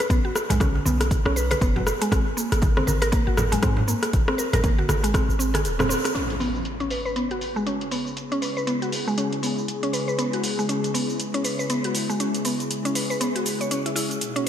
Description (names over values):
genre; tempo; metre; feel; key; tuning
afro house; 119 BPM; 4/4; swing 59% on 16ths; C# dorian; A4 = 440 Hz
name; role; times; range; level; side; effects
mallet-like synth pluck; arpeggios; 0.0-14.5 s; G#3 to C#5; -26 LUFS; equal; chorus, sidechain pumping, analog delay
deep house drum kit; drums; 0.0-14.5 s; cabasa, hi-hat, rim click; -28 LUFS; equal; overdrive, low-pass filter on snare, low-pass filter on hats, low-pass filter on perc, low-pass filter on room
warm 808-style bass; bass; 0.1-6.0 s; D#1 to G#2; -25 LUFS; equal; sidechain pumping
electronic kick drum; drums; 0.1-5.3 s; none; -23 LUFS; equal; overdrive
congas; percussion; 0.5-5.9 s; none; -30 LUFS; right 2 dB; none
warm analog pad; sustained chords; 6.1-14.5 s; B2 to G#4; -30 LUFS; left 2 dB; chorus, sidechain pumping
impact; sound effects; 6.1-8.2 s; none; -32 LUFS; equal; none
room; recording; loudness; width
moderate lush hall reverb, RT60 2.1 s; dreamy mix soaked in reverb; -21 LUFS; side -10 dB against mid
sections
0.0-6.2 A section; 6.2-14.5 B section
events
kick drops out 5.6-6.2; band accent 5.8; impact 6.2-8.2; filter sweep on synth pluck 6.2-14.5; filter sweep on analog synth pad 6.2-14.5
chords
0.0 B5; 2.1 G#; 6.2 C#m